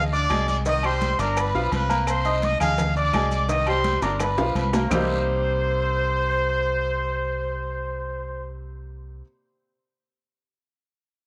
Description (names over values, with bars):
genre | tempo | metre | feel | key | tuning
latin, salsa | 169 BPM | 4/4 | straight | C minor | A4 = 438 Hz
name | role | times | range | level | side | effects
bright trumpet section | melody | 0.0-8.5 s | Bb4 to Eb6 | -27 LUFS | equal | none
bright grand piano | accompaniment | 0.0-9.2 s | C3 to Eb6 | -30 LUFS | equal | none
fingered electric bass | bass | 0.0-9.2 s | G1 to D2 | -29 LUFS | equal | none
congas | percussion | 0.1-5.0 s | none | -34 LUFS | equal | none
maracas | percussion | 0.1-5.0 s | none | -45 LUFS | equal | none
claves | percussion | 0.3-5.0 s | none | -37 LUFS | equal | none
cowbell and bongos | percussion | 0.3-5.0 s | none | -36 LUFS | equal | none
guiro | percussion | 0.3-5.0 s | none | -43 LUFS | equal | none
timbales and agogo bells | percussion | 0.3-5.0 s | none | -34 LUFS | equal | none
room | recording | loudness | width
light reverb, small room ambience | none | -23 LUFS | mono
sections
0.0-4.9 A section; 4.9-7.8 B section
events
drum fill 4.0-4.9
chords
0.0 D7(b5, no3); 0.7 Cm7; 1.4 G7; 2.1 Cm7; 2.8 Dm7b5; 3.5 Cm7; 4.2 G7; 4.9 Cm7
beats
0.30 | 0.66 1.01 1.37 1.72 | 2.08 2.43 2.78 3.14 | 3.49 3.85 4.20 4.55 | 4.91 5.26 5.62 5.97 | 6.33 6.68 7.04 7.40